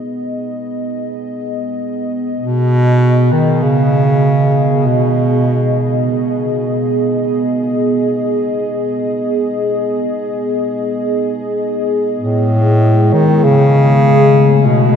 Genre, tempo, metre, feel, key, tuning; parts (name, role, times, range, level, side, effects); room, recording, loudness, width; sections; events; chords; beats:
ambient; free time; G# phrygian; A4 = 441 Hz
dark analog pad; sustained chords; 0.0-15.0 s; G#3 to D#5; -16 LUFS; equal; chorus, shimmer reverb
clear bass clarinet; melody; 2.4-15.0 s; A2 to D#3; -12 LUFS; equal; tape echo
wet huge ambient reverb, RT60 8.3 s; dark, warm production; -12 LUFS; side -7 dB against mid
0.0-15.0 A section
fade-in on analog synth pad 0.0-15.0
0.0 G#m; 12.2 F#m (rootless)
free time